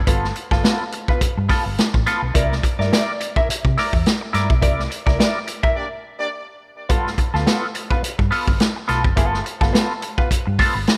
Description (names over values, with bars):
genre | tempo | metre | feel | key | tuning
funk | 106 BPM | 4/4 | swing 56% on 16ths | unclear | A4 = 442 Hz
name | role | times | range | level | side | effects
hollow-body short-scale fingered electric bass | bass | 0.0-10.9 s | F#1 to C3 | -25 LUFS | equal | none
clean electric guitar | accompaniment | 0.1-10.8 s | B3 to E5 | -25 LUFS | equal | wah
vintage drum kit | drums | 0.1-11.0 s | hi-hat, kick drum, snare drum | -22 LUFS | equal | none
warm horn section | second line | 5.8-6.3 s | Bb3 to D5 | -31 LUFS | equal | tape echo
room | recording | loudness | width
light reverb, small room ambience | rough home demo mix | -20 LUFS | mono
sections
0.0-11.0 A section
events
band accent 4.6-6.9; break 5.8-6.9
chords
0.0 G9; 2.3 C9; 6.9 G9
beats
| 0.07 0.64 1.21 1.78 | 2.35 2.92 3.49 4.05 | 4.62 5.19 5.76 6.33 | 6.90 7.47 8.04 8.60 | 9.17 9.74 10.31 10.88